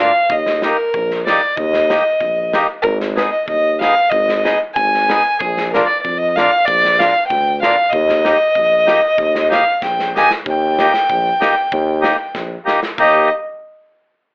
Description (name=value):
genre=alpine folk, alpine dance band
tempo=95 BPM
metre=2/4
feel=straight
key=Eb major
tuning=A4 = 440 Hz
part: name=dark fiddle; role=melody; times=0.0-13.3 s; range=Ab4 to Ab5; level=-14 LUFS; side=equal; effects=none
part: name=accordion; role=accompaniment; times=0.0-13.3 s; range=Bb3 to Ab4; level=-16 LUFS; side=left 1 dB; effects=none
part: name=mellow tuba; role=bass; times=0.0-13.3 s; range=Ab1 to F2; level=-22 LUFS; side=equal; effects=none
part: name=loose indie drum kit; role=drums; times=0.3-13.1 s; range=crash cymbal, hi-hat, kick drum, snare drum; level=-24 LUFS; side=equal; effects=none
room=light reverb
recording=telephone sound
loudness=-12 LUFS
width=side -27 dB against mid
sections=0.3-10.5 A section; 10.5-13.0 B section; 13.0-14.3 C section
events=drum fill 9.8-10.5, 12.3-13.0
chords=0.3 Eb; 2.8 Abm; 5.4 Bb; 7.9 Eb